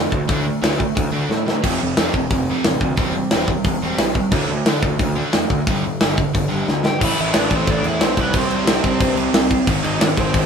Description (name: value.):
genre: punk rock.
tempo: 179 BPM.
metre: 4/4.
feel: straight.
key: C major.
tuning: A4 = 437 Hz.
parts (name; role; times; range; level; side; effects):
biting overdriven guitar; riff; 0.0-10.5 s; F2 to D4; -22 LUFS; right 1 dB; none.
fuzz picked electric bass; bass; 0.0-10.5 s; E1 to D3; -24 LUFS; equal; overdrive.
tight metal drum kit; drums; 0.1-10.4 s; crash cymbal, hi-hat, kick drum, snare drum, splash cymbal; -19 LUFS; equal; none.
nasal lead guitar with a parked wah; melody; 6.9-10.5 s; B3 to G5; -23 LUFS; left 1 dB; overdrive.
room: moderate studio reverb, RT60 0.6 s.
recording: band playing live in one room.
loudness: -16 LUFS.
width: side -6 dB against mid.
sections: 0.0-7.0 A section; 7.0-10.5 B section.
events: drum fill 1.3-1.6, 6.7-7.0.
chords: 0.0 D5; 1.6 F5; 3.0 C/E; 4.3 D5; 5.7 G5; 7.0 Am; 8.2 C5; 9.7 Ab.